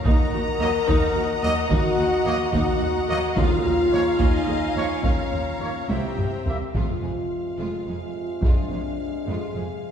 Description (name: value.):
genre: cinematic, epic orchestral film score.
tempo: 72 BPM (dotted quarters).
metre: 6/8.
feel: straight.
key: Eb dorian, F dorian from 6.8 s.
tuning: A4 = 440 Hz.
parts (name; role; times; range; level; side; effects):
warm symphonic violin section; second line; 0.0-9.6 s; F4 to Bb5; -35 LUFS; left 2 dB; none.
rich symphonic viola section; accompaniment; 0.0-9.6 s; Ab3 to F5; -32 LUFS; equal; none.
clear woodwind section; sustained chords; 0.0-6.5 s; Bb3 to F5; -35 LUFS; left 1 dB; none.
dark French horn section; sustained chords; 0.0-9.9 s; C4 to Bb4; -26 LUFS; left 2 dB; none.
rich symphonic violin section; melody; 0.1-9.9 s; C5 to Bb5; -35 LUFS; left 3 dB; none.
rich studio double bass section; bass; 0.1-9.6 s; F1 to Eb2; -30 LUFS; right 2 dB; none.
rich symphonic cello section; bass; 0.1-9.6 s; C2 to F2; -31 LUFS; right 2 dB; none.
taiko ensemble; drums; 0.1-9.0 s; none; -24 LUFS; equal; none.
bright trombone section; sustained chords; 0.6-9.9 s; C3 to Bb3; -35 LUFS; right 3 dB; none.
clear trumpet section; stabs; 0.6-6.6 s; Db5 to E5; -31 LUFS; left 1 dB; none.
timpani; percussion; 3.4-4.2, 6.8-7.6 s; F2 to Eb3; -32 LUFS; right 1 dB; none.
room: wet scoring stage reverb, RT60 1.7 s.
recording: heard from further back in the room.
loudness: -20 LUFS.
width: side -8 dB against mid.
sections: 0.0-6.8 A section; 6.8-9.9 B section.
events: drum fill 5.9-6.8.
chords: 0.1 Ebm; 3.4 Db/Eb; 5.0 Bbm; 5.9 C7; 6.8 Fm.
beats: | 0.05 0.88 | 1.70 2.53 | 3.37 4.20 | 5.04 5.90 | 6.75 7.59 | 8.43 9.28.